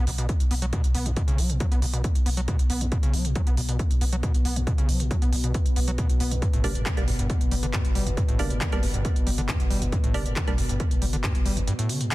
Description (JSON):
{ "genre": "driving peak-time techno", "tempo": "137 BPM", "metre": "4/4", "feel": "straight", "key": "B harmonic minor", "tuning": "A4 = 440 Hz", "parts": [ { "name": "overdriven acid bass", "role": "riff", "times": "0.0-12.1 s", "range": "G1 to B3", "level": "-30 LUFS", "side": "equal", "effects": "distortion, sidechain pumping, tape echo" }, { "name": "saturated sub bass", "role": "bass", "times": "0.0-11.7 s", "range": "G1 to B1", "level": "-28 LUFS", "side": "equal", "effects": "overdrive, sidechain pumping, low-pass filter" }, { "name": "analog drone", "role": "drone", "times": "0.2-12.1 s", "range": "B2", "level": "-34 LUFS", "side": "left 1 dB", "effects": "chorus, sidechain pumping" }, { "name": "techno drum kit", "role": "drums", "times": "0.1-12.1 s", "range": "handclaps, hi-hat", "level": "-33 LUFS", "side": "right 1 dB", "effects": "sidechain pumping on hats" }, { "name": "electronic kick drum", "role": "drums", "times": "0.3-11.3 s", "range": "none", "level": "-24 LUFS", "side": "equal", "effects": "none" }, { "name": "wavetable chord stab", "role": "stabs", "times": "6.6-10.5 s", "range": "G3 to D4", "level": "-34 LUFS", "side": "right 3 dB", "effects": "sidechain pumping, tape echo" } ], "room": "little or no reverb", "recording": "dense, heavily limited modern master", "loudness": "-22 LUFS", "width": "side -18 dB against mid", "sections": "0.0-12.1 A section", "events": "none", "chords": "0.0 B5; 6.4 G5" }